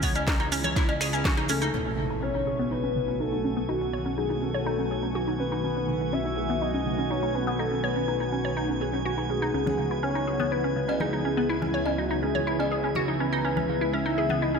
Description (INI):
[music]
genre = progressive house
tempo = 123 BPM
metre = 4/4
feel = straight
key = unclear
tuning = A4 = 440 Hz
[part]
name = shimmering ambient pad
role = sustained chords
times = 0.0-14.6 s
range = C#3 to F#4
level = -32 LUFS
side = right 1 dB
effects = chorus, built-in reverb, sidechain pumping
[part]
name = glassy wavetable pluck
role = arpeggios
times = 0.0-14.6 s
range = C#3 to C#5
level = -29 LUFS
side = equal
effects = chorus, phaser, sidechain pumping, diffuse ambient delay
[part]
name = fat analog bass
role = bass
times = 0.0-14.6 s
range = B1 to C#2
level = -33 LUFS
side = equal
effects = sidechain pumping
[part]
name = electronic kick drum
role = drums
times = 0.0-1.3 s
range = none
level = -26 LUFS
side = equal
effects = none
[part]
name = house drum kit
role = drums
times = 0.0-1.7 s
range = finger snaps, hi-hat, snare drum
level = -32 LUFS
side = equal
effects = low-pass filter on hats, low-pass filter on snare, low-pass filter on room
[part]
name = maracas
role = percussion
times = 0.0-1.7 s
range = none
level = -36 LUFS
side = right 4 dB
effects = none
[part]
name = cowbell and congas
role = percussion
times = 0.2-1.4, 9.7-14.4 s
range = none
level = -35 LUFS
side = left 3 dB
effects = sidechain pumping on perc
[part]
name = soft octave-layered synth lead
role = melody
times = 1.5-14.6 s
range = E4 to E5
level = -30 LUFS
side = left 2 dB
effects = chorus, phaser, sidechain pumping, diffuse ambient delay
[part]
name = impact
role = sound effects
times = 1.7-3.7 s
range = none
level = -38 LUFS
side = equal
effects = none
[part]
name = drifting glass-harmonics texture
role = texture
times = 2.2-14.6 s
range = G#5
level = -38 LUFS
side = right 4 dB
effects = chorus, built-in reverb, sidechain pumping
[sound]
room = moderate plate reverb, RT60 2.0 s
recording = dreamy mix soaked in reverb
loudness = -24 LUFS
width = side -5 dB against mid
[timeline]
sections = 0.0-1.7 A section; 1.7-14.6 B section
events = impact 1.7-3.7; filter sweep on synth arpeggio sound 1.7-14.6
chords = 0.0 C#m7; 1.7 B7; 9.5 C#m7